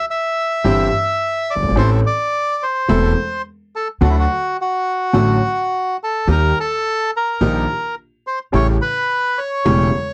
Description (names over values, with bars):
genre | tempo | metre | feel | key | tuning
tango | 107 BPM | 4/4 | rubato | unclear | A4 = 441 Hz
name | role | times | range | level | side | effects
bandoneon | melody | 0.0-10.1 s | E4 to E5 | -21 LUFS | equal | none
warm grand piano | accompaniment | 0.6-9.9 s | E1 to A4 | -21 LUFS | equal | none
bandoneon | stabs | 0.6-9.9 s | A3 to A4 | -29 LUFS | equal | none
upright bass | bass | 0.6-9.9 s | E1 to Eb2 | -20 LUFS | equal | none
room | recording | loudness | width
little or no reverb | cassette tape, nothing above 10.4 kHz | -18 LUFS | mono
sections
0.0-10.1 A section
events
none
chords
0.0 C; 1.8 Am; 4.0 D; 6.3 Eb; 8.5 A7